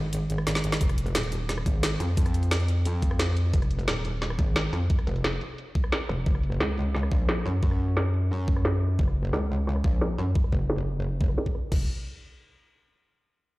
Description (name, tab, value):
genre	dark technical drum and bass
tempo	176 BPM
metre	4/4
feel	straight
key	F phrygian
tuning	A4 = 440 Hz
part	metallic wobble bass	bass	0.0-11.9 s	Eb1 to Gb2	-26 LUFS	equal	chorus, sidechain pumping
part	drum and bass drum kit	drums	0.1-11.8 s	crash cymbal, hi-hat, rim click, snare drum	-30 LUFS	equal	overdrive, low-pass filter on snare, low-pass filter on hats, low-pass filter on cymbals
part	electronic kick drum	drums	0.8-11.8 s	none	-25 LUFS	equal	overdrive
room	little or no reverb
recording	played on a big sound system in a bare room, large studio reverb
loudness	-24 LUFS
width	side -19 dB against mid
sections	0.8-11.7 A section; 11.7-13.1 B section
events	kick drops out 0.1-0.8; drum fill 0.5-0.8; filter sweep on drum 0.8-11.7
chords	none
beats	0.13 0.47 | 0.81 1.15 1.49 1.83 | 2.17 2.51 2.85 3.19 | 3.54 3.88 4.22 4.56 | 4.90 5.24 5.58 5.92 | 6.26 6.60 6.95 7.29 | 7.63 7.97 8.31 8.65 | 8.99 9.33 9.67 10.01 | 10.35 10.70 11.04 11.38 | 11.72